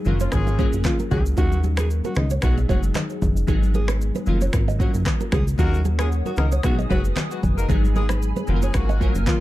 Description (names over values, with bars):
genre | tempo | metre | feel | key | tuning
afrobeats | 114 BPM | 4/4 | swing 55% on 16ths | unclear | A4 = 439 Hz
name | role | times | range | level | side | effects
glassy digital keys | accompaniment | 0.0-9.4 s | Gb3 to Bb4 | -29 LUFS | left 2 dB | chorus
nylon-string guitar | riff | 0.0-9.1 s | Gb4 to Eb5 | -32 LUFS | right 7 dB | tape echo
breathy alto saxophone | melody | 0.1-9.4 s | Eb4 to Ab4 | -32 LUFS | right 1 dB | tape echo
mellow horn section | second line | 0.1-1.2, 5.6-9.1 s | F3 to B4 | -33 LUFS | left 4 dB | none
plucky analog bass | bass | 0.1-9.3 s | Gb1 to Eb2 | -21 LUFS | equal | none
deep house drum kit | drums | 0.1-9.4 s | finger snaps, handclaps, kick drum, rim click, shaker | -23 LUFS | equal | none
congas | percussion | 0.1-9.4 s | none | -30 LUFS | left 2 dB | none
hollow soft pad | sustained chords | 5.6-9.4 s | Ab4 to F6 | -35 LUFS | equal | ensemble chorus
room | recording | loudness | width
small room ambience | dark, warm production | -19 LUFS | side -16 dB against mid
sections
0.0-9.4 A section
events
none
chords
0.1 Gbmaj7; 1.4 Ebm7; 2.4 B6; 3.5 Abm7; 4.3 Gbmaj7; 5.6 Ebm7; 6.6 B6; 7.7 Abm7; 8.5 Gbmaj7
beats
0.33 0.85 | 1.38 1.90 2.43 2.96 | 3.48 4.01 4.54 5.06 | 5.59 6.11 6.64 7.17 | 7.69 8.22 8.75 9.27